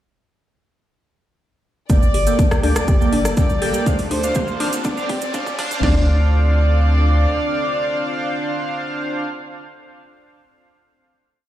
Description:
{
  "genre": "progressive house",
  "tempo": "122 BPM",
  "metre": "4/4",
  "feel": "straight",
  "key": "D minor",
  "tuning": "A4 = 442 Hz",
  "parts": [
    { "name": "expressive synth lead", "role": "melody", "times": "1.9-9.2 s", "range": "C5 to D5", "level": "-25 LUFS", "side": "equal", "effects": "analog chorus, sidechain pumping, tape echo" },
    { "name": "warm studio violin section", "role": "second line", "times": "1.9-9.2 s", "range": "C5 to D5", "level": "-31 LUFS", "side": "left 1 dB", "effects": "sidechain pumping, tape echo" },
    { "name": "lush unison pad", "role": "sustained chords", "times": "2.2-9.2 s", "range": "Bb3 to D5", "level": "-30 LUFS", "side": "left 1 dB", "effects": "chorus, phaser, sidechain pumping" },
    { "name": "analog pluck", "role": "arpeggios", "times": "1.9-6.1 s", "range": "D4 to G4", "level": "-27 LUFS", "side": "left 2 dB", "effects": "chorus, sidechain pumping, tape echo" },
    { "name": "chorused polysynth", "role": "stabs", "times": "1.9-9.2 s", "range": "Bb3 to G5", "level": "-24 LUFS", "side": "right 2 dB", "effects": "sidechain pumping, tape echo" },
    { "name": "round analog bass", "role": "bass", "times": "1.9-7.3 s", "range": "G1 to D2", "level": "-18 LUFS", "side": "equal", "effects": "sidechain pumping" },
    { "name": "house drum kit", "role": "drums", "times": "1.9-5.9 s", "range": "crash cymbal, kick drum, snare drum", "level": "-18 LUFS", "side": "equal", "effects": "none" },
    { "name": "house drum kit", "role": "drums", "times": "1.9-5.8 s", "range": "hi-hat, rim click", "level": "-27 LUFS", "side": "left 1 dB", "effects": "none" },
    { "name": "cabasa", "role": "percussion", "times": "1.9-5.8 s", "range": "none", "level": "-33 LUFS", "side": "right 4 dB", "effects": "none" },
    { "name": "riser", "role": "sound effects", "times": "2.9-5.8 s", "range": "none", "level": "-30 LUFS", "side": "right 1 dB", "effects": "none" }
  ],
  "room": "moderate recital hall reverb, RT60 1.4 s",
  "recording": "played on a big sound system in a bare room, large studio reverb, high-pass filter",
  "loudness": "-16 LUFS",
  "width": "side -12 dB against mid",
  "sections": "1.9-5.8 build; 5.8-9.8 final chord",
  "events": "build-up 1.9-5.8; filter sweep on synth pluck 1.9-5.8; filter sweep on analog polysynth 1.9-5.8; filter sweep 1.9-5.8; riser 2.9-5.8; drum fill 3.9-5.8",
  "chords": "1.9 Gmadd9; 3.9 Dm7"
}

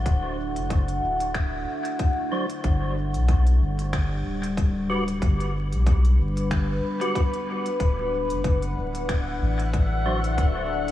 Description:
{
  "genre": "ambient dub",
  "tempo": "93 BPM",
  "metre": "4/4",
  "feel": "swing 56% on 16ths",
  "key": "D major",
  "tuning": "A4 = 440 Hz",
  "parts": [
    { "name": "deep dark ambient pad", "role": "sustained chords", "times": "0.0-10.9 s", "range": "G3 to F#5", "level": "-28 LUFS", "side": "left 1 dB", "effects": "chorus, built-in reverb" },
    { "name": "soft dub sub bass", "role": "bass", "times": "0.0-10.9 s", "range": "D1 to B1", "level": "-24 LUFS", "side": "equal", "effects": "none" },
    { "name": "electronic kick drum", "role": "drums", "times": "0.1-10.5 s", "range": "none", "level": "-24 LUFS", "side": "left 1 dB", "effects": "overdrive" },
    { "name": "organic electronic drum kit", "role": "drums", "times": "0.1-10.9 s", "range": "finger snaps, hi-hat", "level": "-38 LUFS", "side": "equal", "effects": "overdrive, dub echo" },
    { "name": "percussive tonewheel organ", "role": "stabs", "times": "2.3-10.2 s", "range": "F#3 to C5", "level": "-33 LUFS", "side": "equal", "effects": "overdrive, chorus vibrato, fast rotary speaker, dub echo" },
    { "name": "backwards swelling texture", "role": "texture", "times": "8.6-10.9 s", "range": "F#5", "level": "-33 LUFS", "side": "equal", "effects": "built-in reverb" }
  ],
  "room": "moderate huge ambient reverb, RT60 7.6 s",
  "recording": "dreamy mix soaked in reverb, vinyl crackle",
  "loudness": "-22 LUFS",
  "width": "side -13 dB against mid",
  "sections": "0.0-10.9 A section",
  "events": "none",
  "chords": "0.0 D; 2.6 Gmaj7; 7.8 D"
}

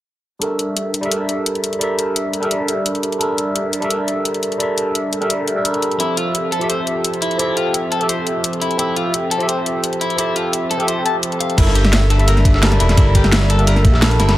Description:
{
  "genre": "liquid drum and bass",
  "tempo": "172 BPM",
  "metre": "4/4",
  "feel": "straight",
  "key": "G dorian",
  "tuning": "A4 = 439 Hz",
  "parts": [
    { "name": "overdriven tine electric piano", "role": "accompaniment", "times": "0.4-14.4 s", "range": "F3 to A5", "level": "-19 LUFS", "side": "equal", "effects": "phaser, dub echo" },
    { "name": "drum and bass drum kit", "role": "drums", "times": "0.4-14.4 s", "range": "crash cymbal, hi-hat, snare drum", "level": "-20 LUFS", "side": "left 1 dB", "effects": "overdrive" },
    { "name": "electric guitar at the edge of break-up", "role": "arpeggios", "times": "6.0-14.4 s", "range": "E4 to A5", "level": "-23 LUFS", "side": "left 2 dB", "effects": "wide subtle chorus, dub echo" },
    { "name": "smooth synth bass", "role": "bass", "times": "11.6-14.4 s", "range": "E1 to Bb1", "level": "-14 LUFS", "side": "equal", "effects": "none" },
    { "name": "dusty soul sampler-style drum kit", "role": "drums", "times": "11.6-14.4 s", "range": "hi-hat, ride cymbal, snare drum", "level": "-24 LUFS", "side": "right 1 dB", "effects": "high-pass filter on cymbals, high-pass filter on snare, high-pass filter on hats, high-pass filter on room" },
    { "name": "electronic kick drum", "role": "drums", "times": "11.6-13.9 s", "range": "none", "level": "-14 LUFS", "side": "equal", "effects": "none" }
  ],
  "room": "light reverb",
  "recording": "none",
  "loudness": "-15 LUFS",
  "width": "side -15 dB against mid",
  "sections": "0.4-11.6 A section; 11.6-14.4 B section",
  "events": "drop 11.6-14.4",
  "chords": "0.4 Gm69; 6.0 Fmaj7; 11.6 Gm69"
}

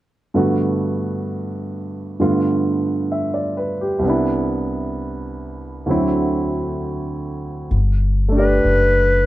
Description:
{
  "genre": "jazz ballad",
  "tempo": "65 BPM",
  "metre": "4/4",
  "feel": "swing 66% on 8ths",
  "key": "G major",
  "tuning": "A4 = 440 Hz",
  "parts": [
    { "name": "warm grand piano", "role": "accompaniment", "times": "0.3-9.3 s", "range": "C2 to E5", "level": "-19 LUFS", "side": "right 1 dB", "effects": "none" },
    { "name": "upright bass", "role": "bass", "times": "7.7-9.3 s", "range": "F#1 to G1", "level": "-17 LUFS", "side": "left 1 dB", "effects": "none" },
    { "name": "breathy clarinet", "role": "melody", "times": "8.4-9.3 s", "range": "B4", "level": "-16 LUFS", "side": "left 1 dB", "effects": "none" }
  ],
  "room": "little or no reverb",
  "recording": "dark, warm production",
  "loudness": "-17 LUFS",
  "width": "side -15 dB against mid",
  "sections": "0.3-7.7 A section; 7.7-9.3 B section",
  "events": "none",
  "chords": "0.3 Gmaj9; 2.2 G7; 4.0 Cmaj7; 5.9 D7; 7.7 Gadd9"
}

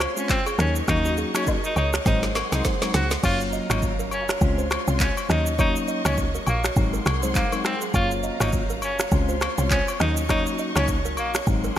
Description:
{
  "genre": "afrobeats",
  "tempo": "102 BPM",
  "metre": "4/4",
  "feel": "swing 58% on 16ths",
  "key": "unclear",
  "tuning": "A4 = 443 Hz",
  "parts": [
    { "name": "warm studio string section", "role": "sustained chords", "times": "0.0-11.8 s", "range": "Gb3 to Db6", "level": "-34 LUFS", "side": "equal", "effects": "none" },
    { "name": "kalimba", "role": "riff", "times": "0.0-11.7 s", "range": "Gb4 to Eb5", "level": "-32 LUFS", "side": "right 4 dB", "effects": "none" },
    { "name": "woody log drum bass", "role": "bass", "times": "0.0-11.7 s", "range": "Gb1 to Eb2", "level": "-26 LUFS", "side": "equal", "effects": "none" },
    { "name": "afro-pop drum kit", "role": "drums", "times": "0.0-11.8 s", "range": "crash cymbal, finger snaps, handclaps, kick drum, rim click, shaker, snare drum", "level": "-25 LUFS", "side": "equal", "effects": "none" },
    { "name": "agogo bells and woodblock", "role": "percussion", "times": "0.0-11.3 s", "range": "none", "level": "-33 LUFS", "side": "left 6 dB", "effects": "none" },
    { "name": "bright tenor saxophone", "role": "melody", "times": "0.2-11.3 s", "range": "Bb3 to Gb4", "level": "-28 LUFS", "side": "equal", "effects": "none" },
    { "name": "mellow tine electric piano", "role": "accompaniment", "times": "0.2-11.7 s", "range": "Gb3 to F4", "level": "-29 LUFS", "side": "left 4 dB", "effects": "none" }
  ],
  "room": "moderate lush hall reverb, RT60 1.9 s, small room ambience",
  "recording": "bright 1980s-style digital production",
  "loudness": "-20 LUFS",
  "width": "side -11 dB against mid",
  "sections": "0.0-3.2 A section; 3.2-11.8 B section",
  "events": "drum fill 2.1-3.2",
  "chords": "0.0 Dbmaj7; 0.6 Ebm7; 2.1 Ab7; 3.2 Gbmaj7; 4.4 Dbmaj7; 5.3 Ebm7; 6.8 Ab7; 7.9 Gbmaj7; 9.1 Dbmaj7; 10.0 Ebm7"
}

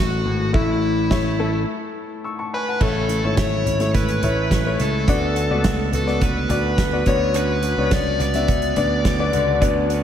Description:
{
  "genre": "piano-driven pop",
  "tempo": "106 BPM",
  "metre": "4/4",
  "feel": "straight",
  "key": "unclear",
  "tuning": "A4 = 437 Hz",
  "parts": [
    { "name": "dark smooth lead guitar", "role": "melody", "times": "0.0-10.0 s", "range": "E4 to D5", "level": "-24 LUFS", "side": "left 2 dB", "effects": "overdrive" },
    { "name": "clear baby grand piano", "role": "accompaniment", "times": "0.0-10.0 s", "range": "A2 to E6", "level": "-24 LUFS", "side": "left 4 dB", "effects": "none" },
    { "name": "modern bright picked electric bass", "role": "bass", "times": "0.0-10.0 s", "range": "G#1 to D2", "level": "-23 LUFS", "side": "right 1 dB", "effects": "none" },
    { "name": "loose indie drum kit", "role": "drums", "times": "0.5-10.0 s", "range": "crash cymbal, hi-hat, kick drum, snare drum, toms", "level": "-23 LUFS", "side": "right 1 dB", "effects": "none" },
    { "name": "direct-recorded clean electric guitar", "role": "riff", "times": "2.8-10.0 s", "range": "A2 to F#4", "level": "-28 LUFS", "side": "right 7 dB", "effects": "wide subtle chorus" }
  ],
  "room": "moderate lush hall reverb, RT60 2.1 s",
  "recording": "dreamy mix soaked in reverb",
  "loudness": "-17 LUFS",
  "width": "side -9 dB against mid",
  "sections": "0.0-2.8 A section; 2.8-10.0 B section",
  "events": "break 1.7-2.8",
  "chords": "0.0 A; 5.1 D6; 7.1 Bmadd9"
}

